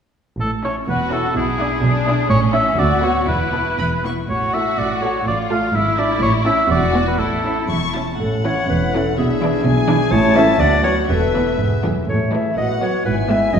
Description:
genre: quick classical-period movement for symphony orchestra.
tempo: 116-129 BPM.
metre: 2/4.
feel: rubato.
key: A major.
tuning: A4 = 440 Hz.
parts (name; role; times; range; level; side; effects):
warm oboe; second line; 0.4-7.7 s; G#4 to F5; -20 LUFS; equal; none.
rich chamber double bass section; bass; 0.4-13.6 s; E1 to D2; -23 LUFS; right 1 dB; none.
warm symphonic cello section; bass; 0.4-13.6 s; D2 to B2; -23 LUFS; right 2 dB; none.
dark chamber violin section; melody; 0.6-13.6 s; E5 to C#6; -28 LUFS; left 4 dB; none.
warm studio viola section; accompaniment; 0.6-13.5 s; E3 to F#4; -24 LUFS; right 2 dB; none.
warm studio violin section; second line; 0.9-13.5 s; B3 to A4; -25 LUFS; left 3 dB; none.
warm clarinet; second line; 8.2-13.6 s; G#4 to E5; -20 LUFS; left 1 dB; none.
warm French horn section; sustained chords; 8.2-13.6 s; A3 to A4; -23 LUFS; left 2 dB; none.
room: wet scoring stage reverb, RT60 1.7 s.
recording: recorded in a church or concert hall.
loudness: -15 LUFS.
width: side -7 dB against mid.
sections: 0.4-8.2 A section; 8.2-13.6 A section.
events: none.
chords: 0.4 A; 1.4 E7/B; 2.3 A; 2.8 Bm/D; 3.3 Esus4; 4.3 A; 4.8 D/A; 5.3 Dm/A; 5.7 E7/G#; 6.2 A; 6.7 E7; 7.2 A; 9.2 E7/B; 10.1 A; 10.6 Bm/D; 11.1 Esus4; 11.6 E; 12.1 A; 12.6 B7/A; 13.1 E/G#.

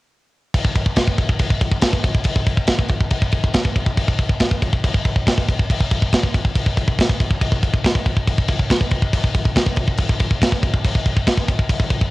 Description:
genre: metal.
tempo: 140 BPM.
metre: 4/4.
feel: straight.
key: none.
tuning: none.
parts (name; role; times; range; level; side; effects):
tight metal drum kit; drums; 0.5-12.1 s; crash cymbal, kick drum, snare drum; -16 LUFS; equal; none.
room: light reverb.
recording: home recording on cassette.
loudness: -16 LUFS.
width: side -20 dB against mid.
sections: 0.5-12.1 A section.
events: none.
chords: none.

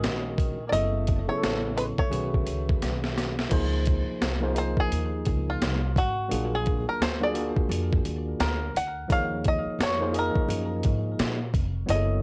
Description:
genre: hip hop, jazz-hop.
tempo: 86 BPM.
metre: 4/4.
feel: swing 62% on 16ths.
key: Db major.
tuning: A4 = 443 Hz.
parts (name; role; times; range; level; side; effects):
bluegrass banjo; melody; 0.0-12.2 s; F4 to Gb5; -32 LUFS; equal; cassette tape, tape echo.
breathy tenor saxophone; second line; 0.0-3.1 s; Eb3 to Bb3; -40 LUFS; equal; cassette tape.
tine electric piano; accompaniment; 0.0-12.2 s; Db3 to Eb5; -34 LUFS; equal; cassette tape.
upright bass; bass; 0.0-12.2 s; F1 to Bb2; -32 LUFS; equal; none.
boom bap sampler-style drum kit; drums; 0.0-12.1 s; crash cymbal, hi-hat, kick drum, snare drum; -30 LUFS; equal; cassette tape.
room: light reverb.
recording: home recording on cassette.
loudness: -27 LUFS.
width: mono.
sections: 0.0-3.5 A section; 3.5-12.2 B section.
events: drum fill 2.8-3.5; five-string banjo solo 3.5-12.2; kick muted 11.9-12.2.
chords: 0.0 Ebm7; 0.7 Gbm7; 2.1 Cb9; 3.5 Dbmaj7; 6.3 Bb7b13; 9.1 Ebm7.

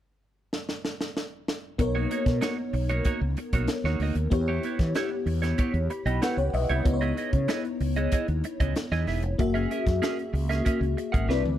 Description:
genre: polished 1980s jazz-funk pop.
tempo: 95 BPM.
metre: 4/4.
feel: straight.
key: B major.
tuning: A4 = 437 Hz.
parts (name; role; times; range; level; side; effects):
crisp fusion drum kit; drums; 0.5-11.6 s; hi-hat, kick drum, snare drum, toms; -29 LUFS; equal; none.
FM electric piano with soft pad layer; accompaniment; 1.8-11.6 s; A#3 to B5; -29 LUFS; left 3 dB; ensemble chorus.
clean electric guitar; riff; 1.8-11.5 s; A#3 to F#5; -31 LUFS; right 6 dB; lush chorus.
mellow fretless electric bass; bass; 1.8-11.6 s; E1 to E3; -27 LUFS; equal; none.
room: small room ambience.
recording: faint mains hum.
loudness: -24 LUFS.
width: side -12 dB against mid.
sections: 0.0-1.8 A section; 1.8-11.6 B section.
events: drum fill 0.5-1.8, 11.3; FM electric piano fill 5.6-6.9.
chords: 0.0 N.C.; 1.8 Bmaj9; 4.3 Em6; 6.9 C#m9; 9.4 F#9.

